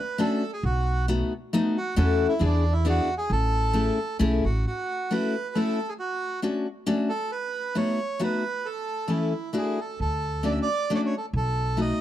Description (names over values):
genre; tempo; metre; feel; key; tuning
musette waltz; 135 BPM; 3/4; rubato; A major; A4 = 440 Hz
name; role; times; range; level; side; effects
bandoneon; melody; 0.0-12.0 s; D4 to E5; -29 LUFS; right 3 dB; none
picked steel-string acoustic guitar; accompaniment; 0.2-12.0 s; E3 to A4; -25 LUFS; left 2 dB; none
upright bass; bass; 0.6-4.6, 10.0-11.9 s; A1 to E2; -25 LUFS; equal; none
room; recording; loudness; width
small room reverb; dry, close 1970s-style studio recording; -23 LUFS; side -12 dB against mid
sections
0.0-4.7 A section; 4.7-12.0 A section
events
none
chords
0.0 Dmaj7; 0.6 B7; 2.0 A/E; 2.4 E7; 3.3 Amaj7; 4.7 A6; 6.0 Dmaj7; 7.3 B7; 8.6 A; 9.5 E9sus4; 10.0 Dmaj7; 11.3 B7